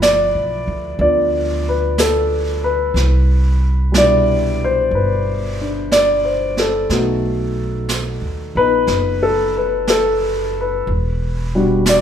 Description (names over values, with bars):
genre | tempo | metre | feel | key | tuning
jazz ballad | 61 BPM | 4/4 | swing 68% on 8ths | unclear | A4 = 439 Hz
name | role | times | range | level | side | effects
dark grand piano | accompaniment | 0.0-12.0 s | B2 to D5 | -16 LUFS | left 1 dB | none
upright bass | bass | 0.0-12.0 s | E1 to D#2 | -20 LUFS | right 1 dB | none
vintage brush drum kit | drums | 0.0-12.0 s | brushed snare drum, hi-hat, snare drum | -24 LUFS | right 3 dB | none
room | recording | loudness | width
light reverb | none | -15 LUFS | side -9 dB against mid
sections
0.0-12.0 A section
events
none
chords
0.0 G13 (rootless); 2.9 Cmaj9; 6.9 B7; 10.9 Em9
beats
0.02 1.00 1.98 | 2.95 3.93 4.92 5.90 | 6.89 7.88 8.87 9.87 | 10.87 11.86